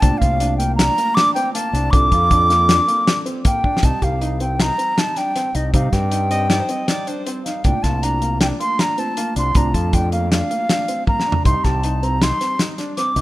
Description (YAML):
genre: progressive instrumental, band music in an uneven meter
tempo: 158 BPM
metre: 5/4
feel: straight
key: C dorian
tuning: A4 = 438 Hz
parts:
  - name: bright baroque flute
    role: melody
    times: 0.0-13.2 s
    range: Eb5 to D6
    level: -20 LUFS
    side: equal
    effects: none
  - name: mellow tine electric piano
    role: accompaniment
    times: 0.0-13.2 s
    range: G3 to A4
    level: -29 LUFS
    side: right 1 dB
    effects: medium stereo tremolo
  - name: warm concert grand piano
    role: arpeggios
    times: 0.0-13.2 s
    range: Bb3 to G4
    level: -27 LUFS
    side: equal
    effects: none
  - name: growling fingered electric bass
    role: bass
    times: 0.0-13.2 s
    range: C2 to C3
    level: -20 LUFS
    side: equal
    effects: overdrive
  - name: warm soul drum kit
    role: drums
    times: 0.0-13.2 s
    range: hi-hat, kick drum, snare drum, toms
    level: -19 LUFS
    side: equal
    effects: none
  - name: clear alto saxophone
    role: second line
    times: 6.3-7.4 s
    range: C5 to Eb5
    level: -29 LUFS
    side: right 2 dB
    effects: none
room: light reverb, small room reverb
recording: rough home demo mix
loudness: -16 LUFS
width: side -17 dB against mid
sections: 0.0-3.8 A section; 3.8-13.2 B section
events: drum fill 3.6, 11.1-11.5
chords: 0.0 C13sus4; 3.8 Cm; 7.6 C13sus4; 11.5 Cm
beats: | 0.03 0.41 0.79 1.17 1.55 | 1.93 2.31 2.69 3.07 3.45 | 3.83 4.22 4.60 4.98 5.36 | 5.74 6.12 6.50 6.89 7.27 | 7.65 8.03 8.41 8.79 9.17 | 9.55 9.93 10.31 10.69 11.07 | 11.45 11.83 12.21 12.59 12.97